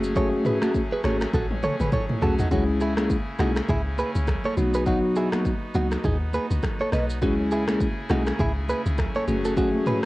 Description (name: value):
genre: afrobeats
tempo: 102 BPM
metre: 4/4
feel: swing 58% on 16ths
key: unclear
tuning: A4 = 440 Hz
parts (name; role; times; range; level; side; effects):
- bell-like tine electric piano; accompaniment; 0.0-10.0 s; F#3 to G#4; -25 LUFS; left 1 dB; cassette tape
- pipe organ, trumpet; sustained chords; 0.0-10.1 s; C#3 to G#4; -36 LUFS; equal; cassette tape
- deep log drum bass; bass; 0.0-9.7 s; F#1 to D#2; -27 LUFS; equal; none
- deep house drum kit; drums; 0.0-10.1 s; finger snaps, kick drum, rim click, shaker, toms; -28 LUFS; equal; cassette tape
- direct-recorded clean electric guitar; riff; 0.2-10.0 s; C#4 to D#5; -29 LUFS; right 2 dB; cassette tape, tape echo
- congas; percussion; 0.2-10.1 s; none; -34 LUFS; right 3 dB; none
room: light reverb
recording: home recording on cassette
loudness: -21 LUFS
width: side -19 dB against mid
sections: 0.0-2.5 A section; 2.5-10.1 B section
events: drum fill 1.3-2.5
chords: 0.0 F#madd9; 2.5 B; 9.3 F#madd9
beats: | 0.16 0.75 1.34 1.93 | 2.51 3.10 3.69 4.28 | 4.87 5.45 6.04 6.63 | 7.22 7.81 8.39 8.98 | 9.57